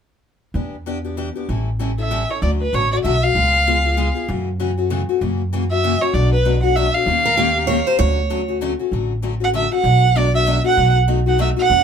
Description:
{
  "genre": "acoustic string swing (jazz manouche)",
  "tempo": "194 BPM",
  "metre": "3/4",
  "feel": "swing 59% on 8ths",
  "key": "D major",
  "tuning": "A4 = 437 Hz",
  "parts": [
    { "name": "picked steel-string acoustic guitar", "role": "accompaniment", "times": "0.5-11.8 s", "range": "B2 to Bb4", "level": "-22 LUFS", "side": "left 7 dB", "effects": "none" },
    { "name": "upright bass", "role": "bass", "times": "0.5-11.8 s", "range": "A1 to F#2", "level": "-20 LUFS", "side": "right 1 dB", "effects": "none" },
    { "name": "warm violin", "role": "melody", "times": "2.0-11.8 s", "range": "B4 to F#5", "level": "-18 LUFS", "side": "right 3 dB", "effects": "none" },
    { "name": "picked steel-string acoustic guitar", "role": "second line", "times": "7.3-8.6 s", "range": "G4 to Db5", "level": "-20 LUFS", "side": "right 3 dB", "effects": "none" }
  ],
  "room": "moderate small room reverb, RT60 0.5 s",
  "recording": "band playing live in one room",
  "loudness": "-16 LUFS",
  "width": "side -7 dB against mid",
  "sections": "0.6-2.4 A section; 2.4-9.8 B section; 9.8-11.8 C section",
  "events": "none",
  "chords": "0.6 Em7; 1.5 A7; 2.4 Dmaj7; 3.4 C#7; 4.3 F#m7; 5.2 F#7; 6.1 Bm7; 7.1 Eb9; 8.0 Dmaj7; 9.8 Bm7; 10.8 B7",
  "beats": "| 0.55 0.86 1.17 | 1.49 1.80 2.11 | 2.42 2.73 3.04 | 3.35 3.66 3.97 | 4.28 4.59 4.90 | 5.21 5.52 5.83 | 6.14 6.45 6.76 | 7.07 7.38 7.69 | 8.00 8.30 8.61 | 8.92 9.23 9.54 | 9.85 10.16 10.47 | 10.78 11.08 11.39 | 11.70"
}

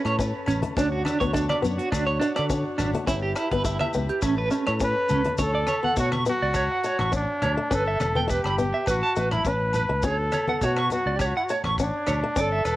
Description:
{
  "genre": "highlife guitar band",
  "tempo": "103 BPM",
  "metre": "4/4",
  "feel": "swing 53% on 16ths",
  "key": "D major",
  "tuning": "A4 = 440 Hz",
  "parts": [
    { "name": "fingerpicked swing-style acoustic guitar", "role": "accompaniment", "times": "0.0-12.6 s", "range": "A3 to C#4", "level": "-30 LUFS", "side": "left 4 dB", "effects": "none" },
    { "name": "overdriven combo organ", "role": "sustained chords", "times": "0.0-5.4 s", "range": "C#4 to C#5", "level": "-34 LUFS", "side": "left 1 dB", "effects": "none" },
    { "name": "agogo bells", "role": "percussion", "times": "0.0-12.8 s", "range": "none", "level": "-37 LUFS", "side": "left 3 dB", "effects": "none" },
    { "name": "electric guitar at the edge of break-up", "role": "arpeggios", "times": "0.1-12.8 s", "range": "C#4 to C#6", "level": "-27 LUFS", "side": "right 3 dB", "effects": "tremolo, analog delay" },
    { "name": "fingered electric bass", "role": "bass", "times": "0.1-12.8 s", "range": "E1 to D3", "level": "-28 LUFS", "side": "equal", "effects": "none" },
    { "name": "tight funk drum kit", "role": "drums", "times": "0.1-12.8 s", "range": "hi-hat, kick drum, rim click", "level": "-33 LUFS", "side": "equal", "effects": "cassette tape" },
    { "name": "maracas", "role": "percussion", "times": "0.2-12.8 s", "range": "none", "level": "-41 LUFS", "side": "left 4 dB", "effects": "none" },
    { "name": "congas", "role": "percussion", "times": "0.5-12.2 s", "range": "none", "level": "-34 LUFS", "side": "left 2 dB", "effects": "none" },
    { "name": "warm trumpet", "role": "melody", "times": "4.8-12.8 s", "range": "D4 to B4", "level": "-26 LUFS", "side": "equal", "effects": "cassette tape" }
  ],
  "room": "light reverb, small room ambience",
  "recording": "home recording on cassette",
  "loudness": "-22 LUFS",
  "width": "side -16 dB against mid",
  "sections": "0.0-5.4 A section; 5.4-12.8 B section",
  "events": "none",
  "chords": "0.0 Aadd9; 0.8 Dmaj7; 3.1 G6; 4.2 Aadd9; 5.4 Dmaj7; 7.7 G6; 8.9 Aadd9; 10.0 Dmaj7",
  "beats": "0.19 | 0.77 1.34 1.92 2.50 | 3.07 3.65 4.23 4.81 | 5.39 5.97 6.55 7.13 | 7.71 8.29 8.88 9.46 | 10.04 10.62 11.21 11.79 | 12.37"
}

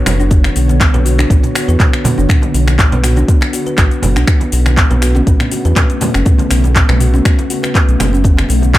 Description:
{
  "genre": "afro house",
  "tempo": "121 BPM",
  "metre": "4/4",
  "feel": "swing 54% on 16ths",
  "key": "B minor",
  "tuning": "A4 = 440 Hz",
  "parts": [
    { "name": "ethereal airy pad", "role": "sustained chords", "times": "0.0-8.8 s", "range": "C#3 to C#5", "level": "-22 LUFS", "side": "equal", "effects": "ensemble chorus, built-in reverb, sidechain pumping" },
    { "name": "round analog bass", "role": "bass", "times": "0.0-8.8 s", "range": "F#1 to E2", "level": "-12 LUFS", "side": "equal", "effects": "sidechain pumping" },
    { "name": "kalimba", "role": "arpeggios", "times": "0.1-8.8 s", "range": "F#3 to B4", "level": "-19 LUFS", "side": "left 1 dB", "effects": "sidechain pumping, analog delay" },
    { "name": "afro-pop drum kit", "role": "drums", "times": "0.1-8.8 s", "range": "finger snaps, handclaps, hi-hat, shaker, toms", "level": "-18 LUFS", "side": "equal", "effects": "small room ambience" },
    { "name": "congas", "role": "percussion", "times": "0.1-8.8 s", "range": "none", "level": "-22 LUFS", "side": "right 2 dB", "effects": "analog delay" },
    { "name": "electronic kick drum", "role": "drums", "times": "0.3-8.8 s", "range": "none", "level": "-11 LUFS", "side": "equal", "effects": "small room ambience" }
  ],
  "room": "little or no reverb",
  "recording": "echo-heavy mix",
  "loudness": "-9 LUFS",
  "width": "side -15 dB against mid",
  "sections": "0.0-8.8 A section",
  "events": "none",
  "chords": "0.0 Bmadd9; 4.3 Aadd9",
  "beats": "| 0.31 0.81 1.30 1.80 | 2.29 2.79 3.29 3.78 | 4.28 4.77 5.27 5.76 | 6.26 6.76 7.25 7.75 | 8.24 8.74"
}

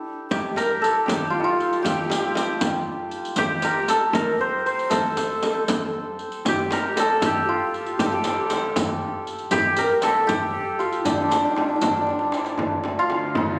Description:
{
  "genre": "Persian modal ensemble",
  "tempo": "78 BPM (dotted quarters)",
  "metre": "6/8",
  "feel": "straight",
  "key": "unclear",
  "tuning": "A4 = 439 Hz",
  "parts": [
    { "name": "santur", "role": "melody", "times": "0.0-13.6 s", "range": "D4 to C5", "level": "-25 LUFS", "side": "equal", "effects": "none" },
    { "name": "breathy mellow low ney", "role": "second line", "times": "0.3-12.3 s", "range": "D4 to C5", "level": "-31 LUFS", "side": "equal", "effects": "none" },
    { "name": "frame drum", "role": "percussion", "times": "0.3-13.5 s", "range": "none", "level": "-31 LUFS", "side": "equal", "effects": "none" },
    { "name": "riq", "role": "percussion", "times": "0.3-12.5 s", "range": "none", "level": "-34 LUFS", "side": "equal", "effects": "none" },
    { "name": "tombak", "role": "percussion", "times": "6.5-13.5 s", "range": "none", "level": "-33 LUFS", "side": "equal", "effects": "none" },
    { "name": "rich studio cello section", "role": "drone", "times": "12.6-13.6 s", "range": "D2", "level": "-34 LUFS", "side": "equal", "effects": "none" }
  ],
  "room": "wet recital hall reverb, RT60 1.4 s",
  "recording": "recorded on a phone in the room, club reverb",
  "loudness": "-23 LUFS",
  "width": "mono",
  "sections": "0.3-12.6 A section; 12.6-13.6 B section",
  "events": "stop 0.0-0.3; drum fill 12.1-12.6",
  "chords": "none",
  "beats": "| 0.31 1.07 | 1.84 2.61 | 3.38 4.14 | 4.91 5.68 | 6.45 7.21 | 7.98 8.75 | 9.52 10.28 | 11.05 11.82 | 12.59 13.36"
}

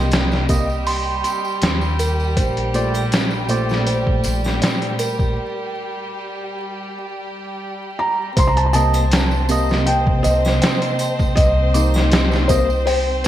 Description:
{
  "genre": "trip hop",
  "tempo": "80 BPM",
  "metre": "4/4",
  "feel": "swing 54% on 16ths",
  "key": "C dorian",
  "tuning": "A4 = 438 Hz",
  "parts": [
    { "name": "tine electric piano", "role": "accompaniment", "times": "0.0-12.7 s", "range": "Bb2 to Eb5", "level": "-23 LUFS", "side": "equal", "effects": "medium stereo tremolo, harmonic tremolo, tape echo" },
    { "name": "clear chamber violin section", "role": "sustained chords", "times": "0.0-13.3 s", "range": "G3 to C5", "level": "-27 LUFS", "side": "equal", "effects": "vintage 12-bit sampler grit" },
    { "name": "music box", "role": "arpeggios", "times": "0.0-13.3 s", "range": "G4 to D6", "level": "-27 LUFS", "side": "right 3 dB", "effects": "ping-pong delay" },
    { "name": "upright bass", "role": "bass", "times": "0.0-13.3 s", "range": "Bb1 to Eb2", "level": "-20 LUFS", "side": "equal", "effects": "none" },
    { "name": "trip hop sampler-style drum kit", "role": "drums", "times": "0.1-13.3 s", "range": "hi-hat, kick drum, snare drum", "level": "-20 LUFS", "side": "equal", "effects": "gated reverb" },
    { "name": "tambourine and triangle", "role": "percussion", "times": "0.1-13.3 s", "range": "none", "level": "-34 LUFS", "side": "right 3 dB", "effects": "none" },
    { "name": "felt-muted upright piano", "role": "melody", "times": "8.0-13.3 s", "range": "C5 to C6", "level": "-21 LUFS", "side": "equal", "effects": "dub echo" }
  ],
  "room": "moderate plate reverb, RT60 1.7 s, studio reverb",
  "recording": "bright 1980s-style digital production, vinyl crackle",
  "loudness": "-16 LUFS",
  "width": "side -12 dB against mid",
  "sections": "0.0-8.4 A section; 8.4-13.3 B section",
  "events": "filter sweep on music box 0.0-8.4; break 5.4-8.4",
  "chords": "0.0 Cm7; 2.4 Bbmaj9; 8.4 Cm7",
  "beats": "0.12 0.87 1.62 | 2.37 3.12 3.87 4.62 | 5.37 6.12 6.87 7.62 | 8.37 9.12 9.87 10.62 | 11.37 12.12 12.87"
}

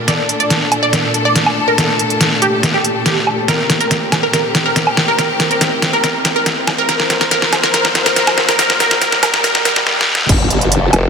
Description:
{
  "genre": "heavy wobble dubstep",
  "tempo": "141 BPM",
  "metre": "4/4",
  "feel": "half-time",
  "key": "G minor",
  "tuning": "A4 = 440 Hz",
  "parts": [
    { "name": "clear studio string section", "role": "sustained chords", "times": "0.0-11.1 s", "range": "Bb2 to C5", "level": "-20 LUFS", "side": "left 2 dB", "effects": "sidechain pumping" },
    { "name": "riser, swell and impact", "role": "sound effects", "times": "1.5-11.1 s", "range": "none", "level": "-26 LUFS", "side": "equal", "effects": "none" },
    { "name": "wide unison pluck", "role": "melody", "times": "0.1-9.8 s", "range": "G4 to D5", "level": "-17 LUFS", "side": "right 1 dB", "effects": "phaser, ping-pong delay" },
    { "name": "dubstep drum kit", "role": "drums", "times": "0.1-11.0 s", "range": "crash cymbal, hi-hat, snare drum, woodblock", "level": "-14 LUFS", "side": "equal", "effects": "none" },
    { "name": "formant-sweep wobble bass", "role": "bass", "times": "10.3-10.9 s", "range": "G1", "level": "-15 LUFS", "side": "equal", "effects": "chorus, overdrive" },
    { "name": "electronic kick drum", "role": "drums", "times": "10.3-10.4 s", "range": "none", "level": "-15 LUFS", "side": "equal", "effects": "none" },
    { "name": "formant-sweep wobble bass", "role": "bass", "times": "10.9-11.1 s", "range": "F1", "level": "-12 LUFS", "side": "equal", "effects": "chorus, overdrive" }
  ],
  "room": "moderate lush hall reverb, RT60 1.9 s",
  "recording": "dense, heavily limited modern master, high-pass filter",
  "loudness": "-11 LUFS",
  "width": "side -6 dB against mid",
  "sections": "0.0-10.3 A section",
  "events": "build-up 0.0-10.3; drum fill 0.0-9.9, 9.9-10.3; swell 9.4-10.3; impact 10.3-11.1",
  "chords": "0.0 Gmadd9",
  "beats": "| 0.08 0.51 0.93 1.36 | 1.78 2.21 2.63 3.06 | 3.48 3.91 4.33 4.76 | 5.19 5.61 6.04 6.46 | 6.89 7.31 7.74 8.16 | 8.59 9.02 9.44 9.87 | 10.29 10.72"
}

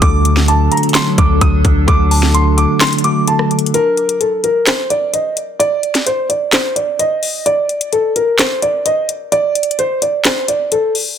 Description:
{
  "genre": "hip hop, trap",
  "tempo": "129 BPM",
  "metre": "4/4",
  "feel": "half-time",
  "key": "unclear",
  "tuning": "A4 = 440 Hz",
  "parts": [
    { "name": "dark concert grand piano", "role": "melody", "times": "0.0-10.9 s", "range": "A4 to Eb6", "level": "-15 LUFS", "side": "equal", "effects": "low-pass filter, ping-pong delay" },
    { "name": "delicate synth tine bell", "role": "second line", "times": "0.0-3.3 s", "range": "A5 to D6", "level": "-23 LUFS", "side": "left 4 dB", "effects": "chorus, ping-pong delay" },
    { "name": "mellow tine electric piano", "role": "accompaniment", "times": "0.0-3.8 s", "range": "D3 to A4", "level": "-17 LUFS", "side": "equal", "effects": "medium stereo tremolo, low-pass filter" },
    { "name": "warbly tape-like pad", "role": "sustained chords", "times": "0.0-3.7 s", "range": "F#3 to A4", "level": "-22 LUFS", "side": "left 1 dB", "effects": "chorus, built-in reverb, phaser" },
    { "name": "warm 808-style bass", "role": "bass", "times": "0.0-2.7 s", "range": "D2", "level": "-13 LUFS", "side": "equal", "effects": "none" },
    { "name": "trap drum kit", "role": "drums", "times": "0.0-11.1 s", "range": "handclaps, hi-hat, kick drum, rim click, snare drum", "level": "-16 LUFS", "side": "left 1 dB", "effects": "soft clipping on snare" }
  ],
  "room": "light reverb, digital ambience",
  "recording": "dense, heavily limited modern master",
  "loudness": "-12 LUFS",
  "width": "side -8 dB against mid",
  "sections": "0.0-3.7 A section; 3.7-11.2 B section",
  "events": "break 2.8-3.7, 3.7-11.2",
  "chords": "0.0 D; 3.7 N.C.",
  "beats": "| 0.02 0.48 0.95 1.41 | 1.88 2.34 2.81 3.27 | 3.74 4.21 4.67 5.13 | 5.60 6.07 6.53 7.00 | 7.46 7.93 8.39 8.86 | 9.32 9.79 10.25 10.72"
}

